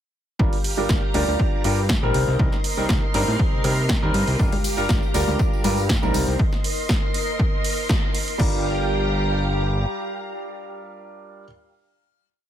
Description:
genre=filtered disco house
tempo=120 BPM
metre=4/4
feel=straight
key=G minor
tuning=A4 = 440 Hz
part: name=clear baby grand piano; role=accompaniment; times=0.4-11.4 s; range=G3 to Bb4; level=-26 LUFS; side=right 1 dB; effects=phaser, vintage 12-bit sampler grit, sidechain pumping
part: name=string machine, full ensemble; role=sustained chords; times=0.4-11.4 s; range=G4 to C6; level=-28 LUFS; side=equal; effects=ensemble chorus, vintage 12-bit sampler grit, sidechain pumping
part: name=fat analog bass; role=bass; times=0.4-9.9 s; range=G1 to C3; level=-24 LUFS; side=equal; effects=sidechain pumping
part: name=electronic kick drum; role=drums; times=0.4-8.5 s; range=none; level=-22 LUFS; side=equal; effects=overdrive
part: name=punchy analog drum machine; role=drums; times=0.5-8.5 s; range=crash cymbal, hi-hat, snare drum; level=-28 LUFS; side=right 1 dB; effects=overdrive, sidechain pumping on hats, sidechain pumping on cymbals
part: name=tambourine and congas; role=percussion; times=4.4-6.4 s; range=none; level=-30 LUFS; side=left 6 dB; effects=sidechain pumping on perc
room=little or no reverb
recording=none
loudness=-19 LUFS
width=side -10 dB against mid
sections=0.4-8.4 drop; 8.4-12.4 final chord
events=drop 0.4-8.4; band accent 7.9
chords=0.4 Gm7; 2.1 Cm7; 4.4 Gm7; 6.1 Cm7; 8.4 Gm7

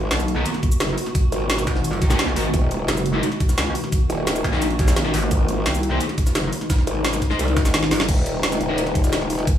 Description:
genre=dark technical drum and bass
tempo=173 BPM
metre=4/4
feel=straight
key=Eb minor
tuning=A4 = 440 Hz
part: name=swarming drone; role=sustained chords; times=0.0-9.6 s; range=Cb3 to Gb4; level=-27 LUFS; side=right 1 dB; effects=built-in reverb, sidechain pumping
part: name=growl bass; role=bass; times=0.0-9.5 s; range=Eb1 to C2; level=-23 LUFS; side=equal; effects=chorus, tube saturation, sidechain pumping
part: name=metallic wobble bass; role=bass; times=0.1-8.1 s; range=Gb1 to Eb2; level=-23 LUFS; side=equal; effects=chorus
part: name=drum and bass drum kit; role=drums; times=0.1-9.5 s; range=cabasa, crash cymbal, hi-hat, snare drum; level=-25 LUFS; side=equal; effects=overdrive
part: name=jungle sampler-style drum kit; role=drums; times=0.1-9.6 s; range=hi-hat, snare drum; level=-32 LUFS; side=left 1 dB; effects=high-pass filter on hats, high-pass filter on snare, high-pass filter on room
part: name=thick fuzz guitar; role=stabs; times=0.4-8.8 s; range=Cb4 to C5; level=-28 LUFS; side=left 2 dB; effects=distortion, dub echo
part: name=electronic kick drum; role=drums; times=0.6-9.5 s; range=none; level=-19 LUFS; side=equal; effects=overdrive
part: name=zap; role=sound effects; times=5.2-5.3 s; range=none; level=-31 LUFS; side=right 1 dB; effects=none
room=light reverb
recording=studio reverb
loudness=-18 LUFS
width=side -10 dB against mid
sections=0.0-8.1 A section; 8.1-9.6 A section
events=drop 0.0-8.1, 8.1-9.6; drum fill 7.8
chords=0.0 Abm7; 2.5 Ebm; 5.3 Ab; 8.1 Ebm

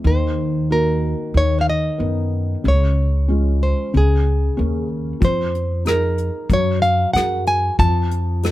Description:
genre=acoustic folk-pop ballad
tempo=93 BPM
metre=4/4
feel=straight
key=unclear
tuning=A4 = 440 Hz
part: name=felt-muted upright piano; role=accompaniment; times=0.0-8.5 s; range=Db3 to A#4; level=-24 LUFS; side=left 2 dB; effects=none
part: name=upright bass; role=bass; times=0.0-8.5 s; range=Db2 to F#2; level=-19 LUFS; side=equal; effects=none
part: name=nylon-string guitar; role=melody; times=0.1-8.5 s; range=Ab4 to A5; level=-21 LUFS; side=equal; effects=none
part: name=soft brush drum kit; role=drums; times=5.2-8.5 s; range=hi-hat, kick drum, rim click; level=-21 LUFS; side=left 1 dB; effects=none
room=little or no reverb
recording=close, detailed microphones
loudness=-16 LUFS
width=side -15 dB against mid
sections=0.0-8.5 A section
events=none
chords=0.0 Ebm; 1.3 Bmaj7/D#; 2.6 Db; 3.9 Bbm7/Db; 5.2 Fm7; 6.5 Gbadd9; 7.8 F

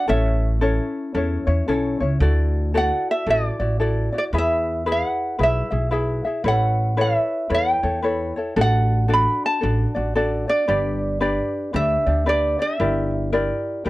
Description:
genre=Hawaiian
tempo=113 BPM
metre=4/4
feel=swing 62% on 8ths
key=D major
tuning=A4 = 441 Hz
part: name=ukulele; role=melody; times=0.0-13.1 s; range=D5 to B5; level=-22 LUFS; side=right 1 dB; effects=none
part: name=ukulele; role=accompaniment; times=0.0-13.9 s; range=C#4 to E5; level=-24 LUFS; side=left 2 dB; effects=none
part: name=upright bass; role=bass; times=0.1-13.9 s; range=G1 to E2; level=-22 LUFS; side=equal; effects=none
room=little or no reverb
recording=dry, close 1970s-style studio recording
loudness=-18 LUFS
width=side -18 dB against mid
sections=0.0-13.9 A section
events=none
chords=0.1 A; 2.2 Dadd9; 4.3 E; 6.4 Aadd9; 8.6 D/A; 10.7 G; 12.8 Gm6

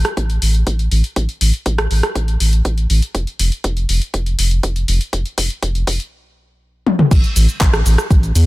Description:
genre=progressive house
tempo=121 BPM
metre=4/4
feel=straight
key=unclear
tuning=A4 = 440 Hz
part: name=round analog bass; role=bass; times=0.0-8.5 s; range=F1 to E2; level=-15 LUFS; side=equal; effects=sidechain pumping
part: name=deep house drum kit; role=drums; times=0.0-8.5 s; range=cabasa, crash cymbal, handclaps, hi-hat, rim click, toms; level=-20 LUFS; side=left 1 dB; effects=none
part: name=electronic kick drum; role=drums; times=0.2-8.2 s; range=none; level=-16 LUFS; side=equal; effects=high-pass filter on kick
room=little or no reverb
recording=faint mains hum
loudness=-14 LUFS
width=side -19 dB against mid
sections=0.0-7.1 A section; 7.1-8.5 B section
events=build-up 0.0-7.1; drum fill 3.1-6.1, 6.9; drop 7.1-8.5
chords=none

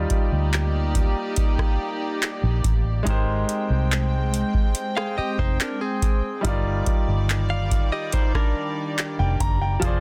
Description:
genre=contemporary R&B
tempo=71 BPM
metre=4/4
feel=straight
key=Eb major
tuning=A4 = 440 Hz
part: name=clear grand piano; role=accompaniment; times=0.0-10.0 s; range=F3 to Bb5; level=-32 LUFS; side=equal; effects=none
part: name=warm studio string section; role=sustained chords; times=0.0-10.0 s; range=D3 to G5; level=-32 LUFS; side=equal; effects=none
part: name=vintage muted fingered electric bass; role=bass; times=0.0-10.0 s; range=F1 to D2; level=-25 LUFS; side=equal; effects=none
part: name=booming analog drum machine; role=drums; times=0.1-10.0 s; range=handclaps, hi-hat, kick drum, rim click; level=-24 LUFS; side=equal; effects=none
part: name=direct-recorded clean electric guitar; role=arpeggios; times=5.0-9.6 s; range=C4 to F5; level=-31 LUFS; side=equal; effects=tape echo
room=little or no reverb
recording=dense, heavily limited modern master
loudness=-23 LUFS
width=mono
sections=0.0-10.0 A section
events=none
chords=0.0 Ebmaj7; 3.1 Abmaj7; 6.4 Ebmaj7/G

